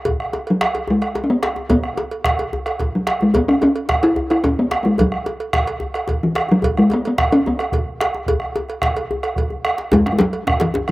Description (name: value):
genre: west african traditional, West African drum ensemble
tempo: 146 BPM (dotted quarters)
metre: 12/8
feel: straight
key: unclear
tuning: A4 = 439 Hz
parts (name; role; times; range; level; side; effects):
- bombo; percussion; 0.1-10.9 s; none; -21 LUFS; right 1 dB; none
- cowbell; percussion; 0.1-10.9 s; none; -27 LUFS; right 4 dB; none
- djembe; percussion; 0.1-10.9 s; none; -25 LUFS; left 2 dB; none
- talking drum; melody; 0.5-10.9 s; E3 to E4; -16 LUFS; left 1 dB; none
- djembe; percussion; 9.9-10.9 s; none; -25 LUFS; right 1 dB; none
room: light reverb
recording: recorded outdoors, with no room sound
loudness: -16 LUFS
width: side -18 dB against mid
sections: 0.0-9.9 A section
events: drum fill 9.4-9.9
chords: none